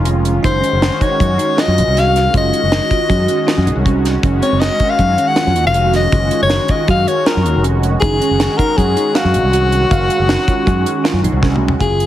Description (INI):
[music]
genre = progressive instrumental, band music in an uneven meter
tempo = 158 BPM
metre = 5/4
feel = straight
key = unclear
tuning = A4 = 440 Hz
[part]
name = warm soprano saxophone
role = melody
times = 0.0-12.1 s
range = Gb4 to Gb5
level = -16 LUFS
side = left 2 dB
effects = plate reverb
[part]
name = lush unison pad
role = accompaniment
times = 0.0-11.8 s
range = Eb3 to Gb4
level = -20 LUFS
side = equal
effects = chorus, phaser, plate reverb
[part]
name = fretless electric bass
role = bass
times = 0.0-12.1 s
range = F1 to Gb2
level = -16 LUFS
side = equal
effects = analog chorus
[part]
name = bell-like tine electric piano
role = arpeggios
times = 0.1-12.1 s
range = C4 to F5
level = -22 LUFS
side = right 4 dB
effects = phaser, plate reverb
[part]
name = deep reggae drum kit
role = drums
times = 0.1-12.1 s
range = hi-hat, kick drum, snare drum, toms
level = -18 LUFS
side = equal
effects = none
[sound]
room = moderate studio reverb, RT60 0.8 s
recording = heavily compressed radio sound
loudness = -12 LUFS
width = side -12 dB against mid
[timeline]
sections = 0.0-11.8 A section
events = drum fill 11.4-11.8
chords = 0.4 Ebm/Gb; 4.2 Gbmaj7(no3); 8.0 Ebm/Gb